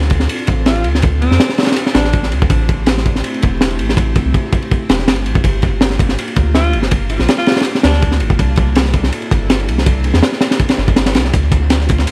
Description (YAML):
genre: drum and bass, jungle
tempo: 163 BPM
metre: 4/4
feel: straight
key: D minor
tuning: A4 = 438 Hz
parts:
  - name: airy breathy pad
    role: sustained chords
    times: 0.0-12.1 s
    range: A3 to A4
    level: -27 LUFS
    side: equal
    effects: chorus, vintage 12-bit sampler grit
  - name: soft dub sub bass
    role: bass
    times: 0.0-12.1 s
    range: E1 to F2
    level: -18 LUFS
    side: equal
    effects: none
  - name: crunchy breakbeat drum kit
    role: drums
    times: 0.0-12.1 s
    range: kick drum, ride cymbal, snare drum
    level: -16 LUFS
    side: equal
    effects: analog delay
  - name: clear alto saxophone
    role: melody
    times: 0.7-2.3, 6.5-8.2 s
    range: C4 to F4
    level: -25 LUFS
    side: equal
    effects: vintage 12-bit sampler grit, analog delay
  - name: dusty soul sampler-style drum kit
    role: drums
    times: 11.3-12.1 s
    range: hi-hat, snare drum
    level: -29 LUFS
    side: equal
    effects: high-pass filter on hats, high-pass filter on snare, high-pass filter on room
room: light reverb, small room ambience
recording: echo-heavy mix, vinyl crackle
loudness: -14 LUFS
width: mono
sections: 0.0-12.1 A section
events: none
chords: 0.0 Dm7; 2.5 Am7; 5.4 Gm7; 8.4 C13; 11.3 Dm7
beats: 0.29 0.66 | 1.03 1.40 1.76 2.13 | 2.50 2.87 3.24 3.60 | 3.97 4.34 4.71 5.08 | 5.45 5.81 6.18 6.55 | 6.92 7.29 7.65 8.02 | 8.39 8.76 9.13 9.49 | 9.86 10.23 10.60 10.97 | 11.34 11.70 12.07